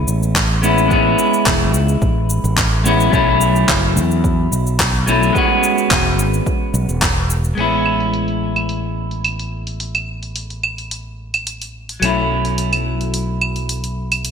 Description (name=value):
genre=sunset chillout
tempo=108 BPM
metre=4/4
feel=straight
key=A major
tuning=A4 = 441 Hz
part: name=semi-hollow electric guitar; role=accompaniment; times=0.0-14.3 s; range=F#3 to F#4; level=-18 LUFS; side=moving between left 4 dB and right 3 dB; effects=auto-pan, digital delay
part: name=fretless electric bass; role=bass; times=0.0-14.3 s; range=E1 to E2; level=-19 LUFS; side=equal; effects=none
part: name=deep house drum kit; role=drums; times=0.1-14.3 s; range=cabasa, claves, crash cymbal, handclaps, hi-hat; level=-20 LUFS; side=right 1 dB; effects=low-pass filter on perc, studio reverb, low-pass filter on snare, low-pass filter on hats, low-pass filter on cymbals, gated reverb
part: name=electronic kick drum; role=drums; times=0.4-7.1 s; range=none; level=-21 LUFS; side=equal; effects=studio reverb
room=moderate lush hall reverb, RT60 1.8 s, digital ambience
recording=bright 1980s-style digital production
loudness=-14 LUFS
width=side -7 dB against mid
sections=0.0-7.6 A section; 7.6-14.3 B section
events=none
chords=0.0 Amaj7; 3.1 B7sus4; 5.4 E69; 7.6 Amaj7; 12.0 B7sus4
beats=0.35 | 0.91 1.47 2.02 2.58 | 3.13 3.69 4.24 4.80 | 5.36 5.91 6.47 7.02 | 7.58 8.13 8.69 9.24 | 9.80 10.36 10.91 11.47 | 12.02 12.58 13.13 13.69 | 14.24